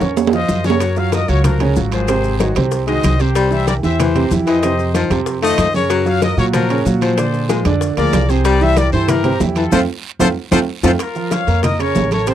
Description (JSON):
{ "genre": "latin, salsa", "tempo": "188 BPM", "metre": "4/4", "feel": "straight", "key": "Bb minor", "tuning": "A4 = 440 Hz", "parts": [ { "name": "brilliant trumpet section", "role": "melody", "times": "0.0-12.3 s", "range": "F4 to F5", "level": "-21 LUFS", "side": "left 4 dB", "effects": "none" }, { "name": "clear concert grand piano", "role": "accompaniment", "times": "0.0-12.3 s", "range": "C3 to Db6", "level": "-19 LUFS", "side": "right 6 dB", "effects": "none" }, { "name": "upright bass", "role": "bass", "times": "0.0-12.3 s", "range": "Ab1 to Bb2", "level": "-18 LUFS", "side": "equal", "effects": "none" }, { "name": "bongos", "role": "percussion", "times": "0.0-12.3 s", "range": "none", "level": "-26 LUFS", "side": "left 7 dB", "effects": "none" }, { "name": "congas", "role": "percussion", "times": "0.0-12.3 s", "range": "none", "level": "-22 LUFS", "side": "left 1 dB", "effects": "none" }, { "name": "guiro", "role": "percussion", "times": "0.0-12.3 s", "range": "none", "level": "-35 LUFS", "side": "right 10 dB", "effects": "none" }, { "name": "maracas", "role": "percussion", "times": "0.0-12.3 s", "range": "none", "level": "-36 LUFS", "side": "left 11 dB", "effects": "none" }, { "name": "timbales", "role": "percussion", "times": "0.2-12.3 s", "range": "none", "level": "-22 LUFS", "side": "right 10 dB", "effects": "none" }, { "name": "warm baritone saxophone", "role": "second line", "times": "0.8-10.9 s", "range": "E3 to Bb3", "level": "-19 LUFS", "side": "left 7 dB", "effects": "none" } ], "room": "light reverb", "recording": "dry, close 1970s-style studio recording", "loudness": "-13 LUFS", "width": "side -11 dB against mid", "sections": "0.8-11.0 A section; 11.0-12.3 B section", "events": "drum fill 0.0-0.8; band accent 9.7-11.0", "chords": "0.0 Bbm; 0.8 Gbmaj7; 2.1 Ab7; 3.4 C; 4.6 F5; 5.3 F7; 5.9 Gbmaj7; 7.2 Bb7; 8.4 C7; 9.7 F; 11.0 Bbm", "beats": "0.17 0.49 | 0.81 1.12 1.44 1.76 | 2.08 2.40 2.72 3.04 | 3.35 3.67 3.99 4.31 | 4.63 4.95 5.27 5.58 | 5.90 6.22 6.54 6.86 | 7.18 7.49 7.81 8.13 | 8.45 8.77 9.09 9.40 | 9.72 10.04 10.36 10.68 | 11.00 11.31 11.63 11.95 | 12.27" }